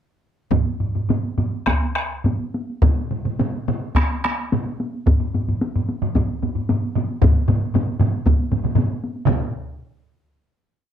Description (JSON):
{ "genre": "japanese traditional, taiko drum ensemble", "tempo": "103-127 BPM", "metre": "4/4", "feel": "straight", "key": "none", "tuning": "none", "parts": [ { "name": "solo taiko drums", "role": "percussion", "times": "0.5-9.5 s", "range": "none", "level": "-26 LUFS", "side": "left 1 dB", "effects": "none" }, { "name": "taiko ensemble", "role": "percussion", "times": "0.5-9.7 s", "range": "none", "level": "-22 LUFS", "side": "equal", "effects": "none" }, { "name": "taiko ensemble", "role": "percussion", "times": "0.5-9.5 s", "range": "none", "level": "-20 LUFS", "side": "equal", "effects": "none" }, { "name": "taiko ensemble", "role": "percussion", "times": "2.8-9.7 s", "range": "none", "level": "-23 LUFS", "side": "right 1 dB", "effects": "none" } ], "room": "little or no reverb", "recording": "close, detailed microphones", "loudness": "-19 LUFS", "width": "side -9 dB against mid", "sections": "0.5-9.3 A section; 9.3-10.9 final hit", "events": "speeding up 0.5-10.9", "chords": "none", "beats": "| 0.51 1.09 1.68 2.25 | 2.83 3.40 3.96 4.52 | 5.08 5.62 6.17 6.70 | 7.23 7.75 8.27 8.78 | 9.28" }